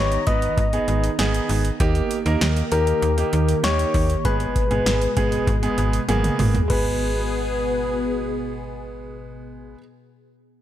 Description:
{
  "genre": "synth-pop",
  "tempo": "98 BPM",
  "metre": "4/4",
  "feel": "straight",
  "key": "G# harmonic minor",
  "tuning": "A4 = 440 Hz",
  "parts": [
    { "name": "soft struck synth lead", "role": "melody", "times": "0.0-9.8 s", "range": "A#4 to D#5", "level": "-25 LUFS", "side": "left 4 dB", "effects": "chorus, slapback echo" },
    { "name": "clear baby grand piano", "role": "accompaniment", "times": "0.0-9.8 s", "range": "G#3 to B4", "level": "-26 LUFS", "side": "right 4 dB", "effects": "none" },
    { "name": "phased analog pad", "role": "sustained chords", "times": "0.0-9.8 s", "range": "B2 to A#5", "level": "-29 LUFS", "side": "equal", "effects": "phaser, chorus" },
    { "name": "slap-like FM bass", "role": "bass", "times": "0.0-9.8 s", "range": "G#1 to D#2", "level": "-24 LUFS", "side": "equal", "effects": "none" },
    { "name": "electro analog drum machine", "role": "drums", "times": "0.1-6.8 s", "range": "crash cymbal, hi-hat, kick drum, snare drum, toms", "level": "-25 LUFS", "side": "equal", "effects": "none" }
  ],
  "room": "light reverb",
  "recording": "none",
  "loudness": "-19 LUFS",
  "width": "side -12 dB against mid",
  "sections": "0.0-6.7 A section; 6.7-9.1 B section",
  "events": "drum fill 6.1-6.7",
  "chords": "0.0 G#m; 1.8 D#; 4.2 G#madd9; 6.7 G#m"
}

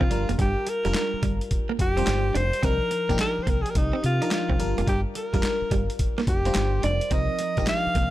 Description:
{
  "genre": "R&B, new jack swing",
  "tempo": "107 BPM",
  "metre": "4/4",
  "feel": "swing 66% on 16ths",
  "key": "unclear",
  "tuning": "A4 = 440 Hz",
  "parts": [
    { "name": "warm alto saxophone", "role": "melody", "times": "0.0-8.1 s", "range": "Eb4 to F5", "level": "-27 LUFS", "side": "equal", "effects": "none" },
    { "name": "FM electric piano", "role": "accompaniment", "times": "0.0-8.1 s", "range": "F3 to C5", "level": "-31 LUFS", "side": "left 1 dB", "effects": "chorus, phaser" },
    { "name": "direct-recorded clean electric guitar", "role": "riff", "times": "0.0-8.1 s", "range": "G3 to Eb4", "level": "-31 LUFS", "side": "right 6 dB", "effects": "lush chorus" },
    { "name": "deep dub fingered electric bass", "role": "bass", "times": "0.0-8.1 s", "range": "F1 to C3", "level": "-26 LUFS", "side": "equal", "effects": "none" },
    { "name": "boom bap sampler-style drum kit", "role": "drums", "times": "0.0-8.1 s", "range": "handclaps, hi-hat, kick drum, snare drum", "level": "-27 LUFS", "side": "equal", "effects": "none" }
  ],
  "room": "little or no reverb",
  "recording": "none",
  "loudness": "-22 LUFS",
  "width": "side -14 dB against mid",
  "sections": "0.0-8.1 A section",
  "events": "none",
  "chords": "0.1 Gm7; 2.6 Cm11; 4.6 Gm7; 7.1 Cm11"
}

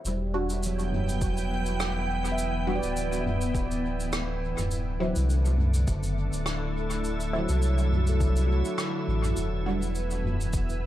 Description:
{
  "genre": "ambient dub",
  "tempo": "103 BPM",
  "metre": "4/4",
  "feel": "swing 55% on 16ths",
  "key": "E minor",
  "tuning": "A4 = 440 Hz",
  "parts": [
    { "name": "soft additive organ-like pad", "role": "sustained chords", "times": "0.6-10.9 s", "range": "D3 to G5", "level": "-32 LUFS", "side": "equal", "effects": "ensemble chorus, built-in reverb" },
    { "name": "handpan", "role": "arpeggios", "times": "0.1-10.9 s", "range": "F#3 to E5", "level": "-34 LUFS", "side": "right 2 dB", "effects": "diffuse ambient delay" },
    { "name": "warm sub bass", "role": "bass", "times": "0.1-10.9 s", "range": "D1 to C2", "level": "-28 LUFS", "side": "equal", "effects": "none" },
    { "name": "soft-mallet drum kit", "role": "drums", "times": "0.1-10.8 s", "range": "cabasa, rim click, toms", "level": "-34 LUFS", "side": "equal", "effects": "dub echo" },
    { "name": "filtered dub chord stab", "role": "stabs", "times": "0.3-9.8 s", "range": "F#3 to F#4", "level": "-34 LUFS", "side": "equal", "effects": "phaser, dub echo" },
    { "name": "electronic kick drum", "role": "drums", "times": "1.2-10.7 s", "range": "none", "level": "-30 LUFS", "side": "equal", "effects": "none" }
  ],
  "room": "light reverb, small room reverb",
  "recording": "none",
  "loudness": "-25 LUFS",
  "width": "side -13 dB against mid",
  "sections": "0.1-10.9 A section",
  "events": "none",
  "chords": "0.1 Em7; 4.7 D7; 9.4 E5"
}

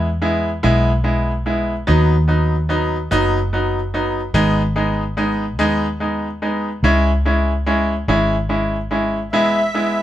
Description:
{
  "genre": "six-eight pop ballad",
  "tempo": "48 BPM (dotted quarters)",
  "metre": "6/8",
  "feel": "straight",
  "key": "G# minor",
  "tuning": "A4 = 440 Hz",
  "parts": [
    { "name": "bright grand piano", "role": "accompaniment", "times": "0.0-10.0 s", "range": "F#3 to E4", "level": "-18 LUFS", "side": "equal", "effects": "none" },
    { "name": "vintage muted fingered electric bass", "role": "bass", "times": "0.0-10.0 s", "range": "E1 to E2", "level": "-19 LUFS", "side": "equal", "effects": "none" },
    { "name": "musette accordion", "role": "second line", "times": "9.3-10.0 s", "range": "E5", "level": "-20 LUFS", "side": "equal", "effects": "none" }
  ],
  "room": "moderate studio ambience, RT60 0.5 s",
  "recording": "band playing live in one room",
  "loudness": "-16 LUFS",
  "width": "side -12 dB against mid",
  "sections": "0.0-10.0 A section",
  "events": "none",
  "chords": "0.0 E; 1.9 B/D#; 4.3 G#m; 6.8 C#m; 9.3 E"
}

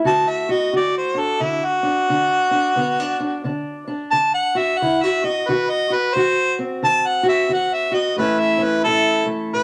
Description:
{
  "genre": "acoustic country blues, solo or duo",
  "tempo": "89 BPM",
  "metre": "4/4",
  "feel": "swing 61% on 8ths",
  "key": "unclear",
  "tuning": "A4 = 438 Hz",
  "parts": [
    { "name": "fingerpicked steel-string acoustic guitar", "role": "accompaniment", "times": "0.0-9.6 s", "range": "A2 to F#4", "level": "-24 LUFS", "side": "equal", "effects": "none" },
    { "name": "clear harmonica", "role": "melody", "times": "0.1-9.6 s", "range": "E4 to A5", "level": "-21 LUFS", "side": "equal", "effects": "none" }
  ],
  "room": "moderate studio reverb, RT60 0.8 s",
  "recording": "none",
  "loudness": "-19 LUFS",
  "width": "mono",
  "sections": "0.0-9.6 A section",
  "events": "none",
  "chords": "0.1 D; 5.5 D#m6; 8.2 A"
}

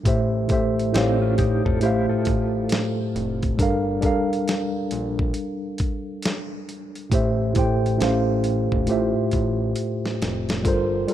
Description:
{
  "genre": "lo-fi hip hop",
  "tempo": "68 BPM",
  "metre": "4/4",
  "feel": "swing 62% on 16ths",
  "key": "unclear",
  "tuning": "A4 = 441 Hz",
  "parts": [
    { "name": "mellow tine electric piano", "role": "accompaniment", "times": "0.0-11.1 s", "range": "A2 to G5", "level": "-22 LUFS", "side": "equal", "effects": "medium stereo tremolo, low-pass filter" },
    { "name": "fat analog bass", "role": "bass", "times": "0.1-11.1 s", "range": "E#1 to Bb1", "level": "-29 LUFS", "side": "left 1 dB", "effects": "none" },
    { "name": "dusty soul sampler-style drum kit", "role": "drums", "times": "0.1-11.1 s", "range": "hi-hat, kick drum, snare drum", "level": "-25 LUFS", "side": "equal", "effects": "none" },
    { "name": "mellow electric guitar", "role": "second line", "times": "0.9-3.4 s", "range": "B#3 to A4", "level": "-31 LUFS", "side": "left 3 dB", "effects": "tremolo, low-pass filter, tape echo" }
  ],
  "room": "moderate plate reverb, RT60 2.7 s",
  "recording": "rough home demo mix",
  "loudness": "-20 LUFS",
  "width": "side -11 dB against mid",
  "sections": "0.0-10.6 A section",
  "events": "drum fill 9.8-10.6",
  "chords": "0.1 Am7; 0.9 A7alt; 1.8 Fmaj9; 3.6 Gm7; 7.1 Am7; 8.0 A7alt; 8.9 Fmaj9"
}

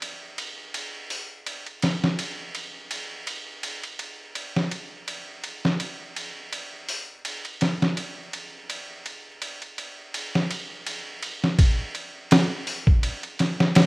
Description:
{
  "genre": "trip hop",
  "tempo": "83 BPM",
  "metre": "4/4",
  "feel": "swing 56% on 16ths",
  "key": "none",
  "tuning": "none",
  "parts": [
    { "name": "trip hop sampler-style drum kit", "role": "drums", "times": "0.0-13.9 s", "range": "hi-hat, kick drum, ride cymbal, snare drum", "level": "-24 LUFS", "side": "equal", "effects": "none" }
  ],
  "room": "little or no reverb",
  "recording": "rough home demo mix, vinyl crackle",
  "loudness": "-25 LUFS",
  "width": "side -24 dB against mid",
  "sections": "0.0-11.6 A section; 11.6-13.9 B section",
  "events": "none",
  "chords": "none"
}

